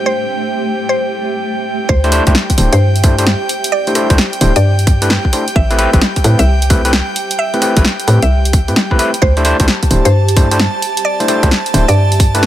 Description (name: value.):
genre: UK garage, two-step garage.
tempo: 131 BPM.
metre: 4/4.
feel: swing 65% on 16ths.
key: unclear.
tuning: A4 = 440 Hz.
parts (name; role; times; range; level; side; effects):
airy breathy pad; sustained chords; 0.0-12.5 s; G5 to A5; -22 LUFS; right 3 dB; chorus, sidechain pumping.
granular cloud pad; texture; 0.0-12.5 s; A3 to E5; -24 LUFS; right 1 dB; built-in reverb, sidechain pumping.
mallet-like synth pluck; melody; 0.1-12.1 s; C5 to E5; -20 LUFS; equal; chorus, dub echo.
hollow knocking FM bass; bass; 1.9-12.5 s; D1 to A2; -13 LUFS; equal; none.
electronic kick drum; drums; 1.9-12.3 s; none; -12 LUFS; equal; overdrive.
overdriven tine electric piano; stabs; 2.0-12.5 s; A3 to C5; -17 LUFS; left 1 dB; ping-pong delay.
punchy analog drum machine; drums; 2.0-12.5 s; hi-hat, rim click, snare drum; -16 LUFS; equal; overdrive.
room: little or no reverb.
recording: none.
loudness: -10 LUFS.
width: side -12 dB against mid.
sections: 0.0-1.9 A section; 1.9-12.5 B section.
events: drop 1.9-12.5.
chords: 0.0 Am7; 1.9 D7sus4; 5.6 Am7; 9.2 D7sus4.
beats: | 0.06 0.52 0.98 1.44 | 1.89 2.35 2.81 3.27 | 3.73 4.18 4.64 5.10 | 5.56 6.01 6.47 6.93 | 7.39 7.85 8.30 8.76 | 9.22 9.68 10.14 10.60 | 11.05 11.51 11.97 12.43.